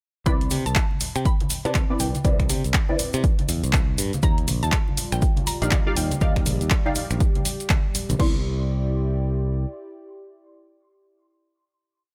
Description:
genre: deep house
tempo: 121 BPM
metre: 4/4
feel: swing 60% on 16ths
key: C major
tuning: A4 = 441 Hz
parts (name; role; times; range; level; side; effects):
- mallet-like synth pluck; melody; 0.3-11.2 s; G5 to C6; -36 LUFS; equal; analog chorus, dub echo
- filtered dub chord stab; stabs; 0.3-11.2 s; B3 to F5; -31 LUFS; equal; phaser, ensemble chorus, sidechain pumping, delay
- modern bright fingered electric bass; bass; 0.3-9.6 s; Bb1 to C3; -27 LUFS; equal; sidechain pumping
- electronic kick drum; drums; 0.3-8.3 s; none; -24 LUFS; equal; none
- punchy analog drum machine; drums; 0.3-8.3 s; crash cymbal, finger snaps, handclaps, hi-hat; -30 LUFS; equal; none
- maracas; percussion; 0.3-8.2 s; none; -35 LUFS; equal; none
- congas; percussion; 0.5-8.2 s; none; -34 LUFS; equal; none
- warm analog pad; sustained chords; 4.2-11.2 s; G3 to D5; -37 LUFS; equal; chorus, sidechain pumping
room: digital ambience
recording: none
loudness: -23 LUFS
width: mono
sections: 0.3-8.2 drop; 8.2-12.1 final chord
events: drop 0.3-8.2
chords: 0.3 Cmaj9; 4.2 Ebmaj9; 8.2 Cmaj9

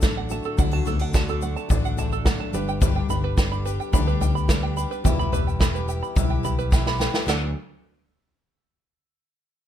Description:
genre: indie folk with a building arrangement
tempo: 108 BPM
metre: 4/4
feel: straight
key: D major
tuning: A4 = 440 Hz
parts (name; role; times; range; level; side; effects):
- felt-muted upright piano; accompaniment; 0.0-7.5 s; G1 to E5; -34 LUFS; right 3 dB; none
- fingerpicked steel-string acoustic guitar; accompaniment; 0.0-4.8 s; D2 to G4; -36 LUFS; equal; none
- picked twelve-string acoustic guitar; accompaniment; 0.0-7.5 s; G2 to G4; -32 LUFS; left 6 dB; none
- open-back banjo; arpeggios; 0.0-7.5 s; A4 to B5; -30 LUFS; right 9 dB; none
- fingered electric bass; bass; 0.0-7.5 s; E1 to D2; -27 LUFS; equal; none
- unplugged drum kit; drums; 0.0-7.4 s; china cymbal, kick drum, snare drum, toms; -22 LUFS; left 1 dB; none
- egg shaker; percussion; 0.0-7.5 s; none; -38 LUFS; left 11 dB; none
room: little or no reverb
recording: none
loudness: -20 LUFS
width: side -10 dB against mid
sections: 0.0-7.3 A section; 7.3-9.5 B section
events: drum fill 6.7-7.3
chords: 0.0 D; 2.5 G; 5.0 Em; 7.3 D

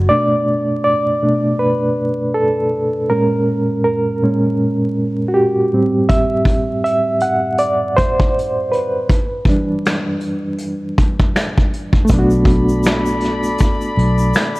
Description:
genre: lo-fi hip hop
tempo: 80 BPM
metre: 4/4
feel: swing 58% on 16ths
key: B phrygian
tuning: A4 = 439 Hz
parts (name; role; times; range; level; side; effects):
- barky reed electric piano; accompaniment; 0.0-14.6 s; A2 to F#5; -16 LUFS; right 1 dB; overdrive, fast tremolo, cassette tape, low-pass filter
- warm brass ensemble; sustained chords; 0.0-0.1, 12.1-14.6 s; A4 to B5; -22 LUFS; left 1 dB; low-pass filter
- vintage muted fingered electric bass; bass; 0.0-0.1, 12.1-14.3 s; B1; -16 LUFS; equal; none
- vintage brush drum kit; drums; 6.1-14.6 s; finger snaps, hi-hat, kick drum, snare drum; -16 LUFS; equal; none
- tube shaker; percussion; 12.1-14.6 s; none; -38 LUFS; left 6 dB; none
room: light reverb, small room ambience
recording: vinyl crackle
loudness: -14 LUFS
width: side -21 dB against mid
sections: 0.1-12.1 A section; 12.1-14.6 B section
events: reed electric piano solo 0.1-12.1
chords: 0.1 Bm7; 3.1 A#m7; 5.7 Am7; 9.1 Em7; 12.1 Bm7

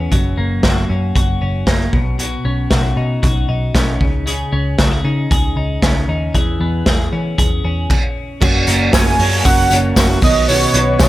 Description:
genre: jangly indie pop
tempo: 116 BPM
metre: 4/4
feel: straight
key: unclear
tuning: A4 = 444 Hz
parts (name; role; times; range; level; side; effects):
- twelve-string electric guitar; arpeggios; 0.0-11.1 s; F#2 to G#4; -21 LUFS; left 2 dB; digital delay
- vintage muted picked electric bass; bass; 0.0-11.1 s; F#1 to E3; -19 LUFS; equal; none
- raw garage drum kit; drums; 0.1-11.1 s; crash cymbal, hi-hat, kick drum, snare drum; -16 LUFS; equal; none
- fingerpicked steel-string acoustic guitar; accompaniment; 8.4-11.1 s; B2 to F#4; -21 LUFS; right 4 dB; none
- warm analog pad; sustained chords; 8.4-11.1 s; A#4 to C#6; -25 LUFS; left 1 dB; chorus
- tambourine; percussion; 8.7-11.1 s; none; -28 LUFS; left 9 dB; none
- warm velvety synth lead; melody; 8.9-11.1 s; C#5 to G#5; -16 LUFS; right 3 dB; chorus
room: little or no reverb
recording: none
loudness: -13 LUFS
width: side -15 dB against mid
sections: 0.0-8.4 A section; 8.4-11.1 B section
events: none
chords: 0.1 F#; 1.9 Badd9; 4.0 C#sus2; 6.3 E6; 8.4 F#; 10.2 Badd9

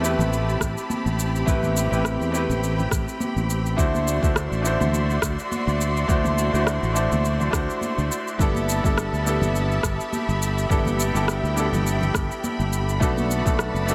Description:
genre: sunset chillout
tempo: 104 BPM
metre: 4/4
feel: swing 55% on 16ths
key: unclear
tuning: A4 = 438 Hz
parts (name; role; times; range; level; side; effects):
- bright concert grand piano; accompaniment; 0.0-13.9 s; G3 to C5; -29 LUFS; equal; digital delay
- rich studio string section; sustained chords; 0.0-13.9 s; C4 to C6; -31 LUFS; equal; none
- sustaining fretless electric bass; bass; 0.0-13.9 s; F#1 to E2; -27 LUFS; equal; none
- electronic cabasa and rim click; drums; 0.0-13.9 s; none; -32 LUFS; equal; none
- congas; percussion; 0.2-13.3 s; none; -33 LUFS; equal; none
- electronic kick drum; drums; 0.6-13.6 s; none; -26 LUFS; equal; none
room: light reverb, small room reverb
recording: none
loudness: -23 LUFS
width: mono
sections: 0.0-13.9 A section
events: none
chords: 0.0 Am9; 3.8 D9; 8.4 G69; 13.0 Bm7

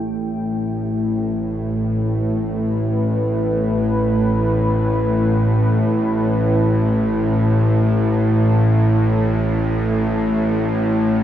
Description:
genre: dark ambient drone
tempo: free time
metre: none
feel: none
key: unclear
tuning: A4 = 440 Hz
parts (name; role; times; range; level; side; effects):
- deep dark ambient pad; sustained chords; 0.0-11.2 s; A3 to A5; -22 LUFS; equal; chorus, built-in reverb
- bowed-like drone; drone; 0.0-11.2 s; A1 to A2; -17 LUFS; equal; built-in reverb
room: wet cathedral reverb, RT60 6.2 s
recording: none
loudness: -16 LUFS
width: side -11 dB against mid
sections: 0.0-11.2 A section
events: fade-out on ambient pad 0.0-11.2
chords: 0.0 A5

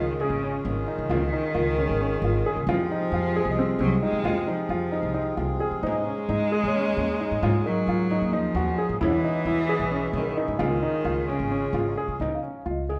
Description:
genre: contemporary instrumental, chamber music in an uneven meter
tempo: 266 BPM (eighths)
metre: 7/8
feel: straight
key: Db major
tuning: A4 = 440 Hz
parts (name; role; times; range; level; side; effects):
- rich cello; second line; 0.0-12.0 s; Db3 to Ab3; -30 LUFS; equal; none
- hand-pumped harmonium; sustained chords; 0.0-12.2 s; B2 to F4; -34 LUFS; equal; none
- dark grand piano; arpeggios; 0.0-13.0 s; C4 to Ab4; -30 LUFS; equal; none
- upright bass; bass; 0.0-13.0 s; Ab1 to F3; -32 LUFS; equal; none
- celesta; texture; 0.0-13.0 s; Ab4 to F5; -40 LUFS; equal; none
- frame drum; percussion; 0.2-13.0 s; none; -40 LUFS; equal; none
room: moderate recital hall reverb, RT60 1.8 s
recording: none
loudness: -25 LUFS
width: mono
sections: 0.0-12.2 A section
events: none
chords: 0.0 Db; 2.7 Fm; 5.8 Absus4; 9.0 E; 10.6 Db

